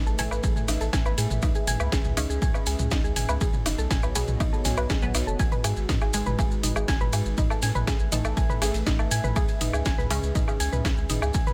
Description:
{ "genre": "melodic techno", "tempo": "121 BPM", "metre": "4/4", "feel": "straight", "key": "unclear", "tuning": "A4 = 439 Hz", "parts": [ { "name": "dark analog pad", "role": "sustained chords", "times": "0.0-11.5 s", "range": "G#3 to E5", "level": "-39 LUFS", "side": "equal", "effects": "chorus, sidechain pumping" }, { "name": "soft round pluck", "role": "arpeggios", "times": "0.0-11.5 s", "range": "D#4 to G#6", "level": "-34 LUFS", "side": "equal", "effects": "chorus, cassette tape, sidechain pumping, tape echo" }, { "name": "round analog bass", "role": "bass", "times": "0.0-11.4 s", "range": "F#1 to A2", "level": "-31 LUFS", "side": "equal", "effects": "sidechain pumping" }, { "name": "maracas", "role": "percussion", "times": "0.1-11.5 s", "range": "none", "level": "-38 LUFS", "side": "equal", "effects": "none" }, { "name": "filtered dub chord stab", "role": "stabs", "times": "0.2-10.3 s", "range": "G#2 to C#4", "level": "-40 LUFS", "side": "equal", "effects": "phaser, ensemble chorus, sidechain pumping, tape echo" }, { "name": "breakbeat sampler-style drum kit", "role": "drums", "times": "0.2-11.5 s", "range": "ride cymbal, snare drum", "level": "-44 LUFS", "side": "equal", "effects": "none" }, { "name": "techno drum kit", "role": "drums", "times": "0.2-11.5 s", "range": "hi-hat, snare drum, toms, woodblock", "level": "-33 LUFS", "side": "equal", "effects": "none" }, { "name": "electronic kick drum", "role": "drums", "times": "0.4-11.4 s", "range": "none", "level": "-28 LUFS", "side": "equal", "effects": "none" } ], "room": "little or no reverb", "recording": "none", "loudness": "-25 LUFS", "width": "mono", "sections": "0.0-11.5 A section", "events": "none", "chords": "0.0 Asus2; 1.4 C#m7; 3.4 Badd9; 5.4 G#m7; 7.4 Asus2; 9.4 C#m7", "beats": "0.43 0.93 | 1.43 1.92 2.42 2.92 | 3.41 3.91 4.40 4.90 | 5.39 5.89 6.39 6.88 | 7.38 7.87 8.37 8.87 | 9.36 9.86 10.35 10.85 | 11.34" }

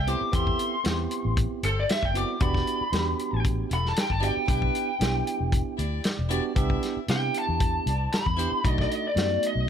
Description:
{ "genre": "straight-eighth soul blues", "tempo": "116 BPM", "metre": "4/4", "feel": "straight", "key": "E minor", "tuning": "A4 = 444 Hz", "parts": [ { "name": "lead guitar through a small cranked amp", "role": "melody", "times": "0.0-9.7 s", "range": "A4 to D6", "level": "-28 LUFS", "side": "left 1 dB", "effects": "overdrive" }, { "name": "vintage muted fingered electric bass", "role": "bass", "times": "0.0-9.7 s", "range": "E1 to C3", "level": "-28 LUFS", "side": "left 1 dB", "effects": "none" }, { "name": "bell-like tine electric piano", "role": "accompaniment", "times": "0.1-9.7 s", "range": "A3 to D5", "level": "-31 LUFS", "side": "right 7 dB", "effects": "none" }, { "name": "warm horn section", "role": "sustained chords", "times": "0.1-9.2 s", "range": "E4 to E5", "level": "-38 LUFS", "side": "left 4 dB", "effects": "none" }, { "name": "warm soul drum kit", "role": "drums", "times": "0.1-9.6 s", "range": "hi-hat, kick drum, snare drum", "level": "-28 LUFS", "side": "left 1 dB", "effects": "none" } ], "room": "little or no reverb", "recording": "none", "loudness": "-23 LUFS", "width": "side -8 dB against mid", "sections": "0.0-9.7 A section", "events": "tine electric piano fill 5.8-6.6", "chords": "0.0 Am7; 2.4 Em7; 6.6 Cmaj7; 8.6 B7#9", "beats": "| 0.33 0.85 1.37 1.89 | 2.41 2.93 3.45 3.97 | 4.49 5.01 5.53 6.05 | 6.57 7.08 7.61 8.12 | 8.64 9.16 9.68" }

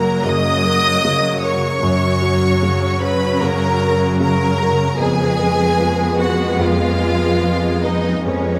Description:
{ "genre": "cinematic, emotional film score for orchestra", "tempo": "75 BPM", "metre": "4/4", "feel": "rubato", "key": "unclear", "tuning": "A4 = 440 Hz", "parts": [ { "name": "rich studio violin section", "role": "melody", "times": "0.0-8.6 s", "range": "C#5 to D#6", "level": "-25 LUFS", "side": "equal", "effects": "none" }, { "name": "clear studio violin section", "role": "second line", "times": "0.0-8.6 s", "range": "C#4 to D#5", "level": "-24 LUFS", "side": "equal", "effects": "none" }, { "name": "rich studio viola section", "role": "accompaniment", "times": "0.0-8.6 s", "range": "F#3 to C#4", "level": "-25 LUFS", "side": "equal", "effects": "none" }, { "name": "warm grand piano", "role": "accompaniment", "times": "0.0-8.6 s", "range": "E#2 to C#5", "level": "-23 LUFS", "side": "equal", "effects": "none" }, { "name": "concert harp", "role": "arpeggios", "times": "0.0-8.6 s", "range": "E#2 to C#5", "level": "-27 LUFS", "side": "equal", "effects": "none" }, { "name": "clear studio cello section", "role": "bass", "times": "0.0-8.6 s", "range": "E#2 to F#2", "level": "-24 LUFS", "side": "equal", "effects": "none" } ], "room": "moderate scoring stage reverb, RT60 1.6 s", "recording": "close, detailed microphones", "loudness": "-17 LUFS", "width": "mono", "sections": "0.0-8.6 A section", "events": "none", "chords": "0.0 F#; 5.0 C#7/E#", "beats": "0.25 1.03 | 1.82 2.61 3.41 4.20 | 4.99 5.78 6.59 7.41 | 8.25" }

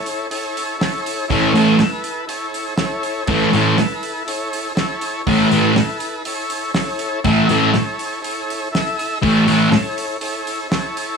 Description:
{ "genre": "garage rock duo or trio", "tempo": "121 BPM", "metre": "4/4", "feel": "straight", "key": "A major", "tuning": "A4 = 435 Hz", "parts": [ { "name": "combo organ", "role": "sustained chords", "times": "0.0-11.2 s", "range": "E4 to E5", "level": "-23 LUFS", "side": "left 1 dB", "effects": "wide subtle chorus" }, { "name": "cloth-damped thuddy drum kit", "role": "drums", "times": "0.1-11.1 s", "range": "hi-hat, kick drum, snare drum", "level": "-24 LUFS", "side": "right 1 dB", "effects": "none" }, { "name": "thick fuzz guitar", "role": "riff", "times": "1.3-9.7 s", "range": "A2 to A3", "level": "-13 LUFS", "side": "equal", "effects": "distortion" } ], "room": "moderate studio reverb, RT60 0.5 s", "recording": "none", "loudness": "-16 LUFS", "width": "side -5 dB against mid", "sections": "0.0-11.2 A section", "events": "none", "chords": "0.0 A", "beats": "0.31 0.81 | 1.30 1.80 2.29 2.79 | 3.29 3.78 4.28 4.77 | 5.27 5.76 6.26 6.75 | 7.25 7.75 8.24 8.74 | 9.23 9.73 10.22 10.72" }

